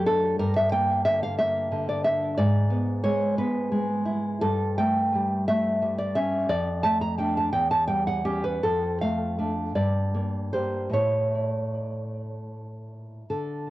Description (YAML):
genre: romantic piece for solo classical guitar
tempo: 48-62 BPM (dotted quarters)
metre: 6/8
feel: rubato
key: unclear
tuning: A4 = 440 Hz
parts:
  - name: nylon-string guitar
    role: solo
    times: 0.0-13.7 s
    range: E2 to Bb5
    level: -23 LUFS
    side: equal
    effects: cassette tape, tape echo
room: moderate small room reverb, RT60 0.5 s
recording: home recording on cassette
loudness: -23 LUFS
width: side -16 dB against mid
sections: 0.0-13.3 A section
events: none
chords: 0.4 Gm; 2.4 E7/G#; 4.4 A7/G; 6.5 Dm/F; 7.5 C#dim/E; 8.6 Dm/F; 9.8 Gm; 10.9 A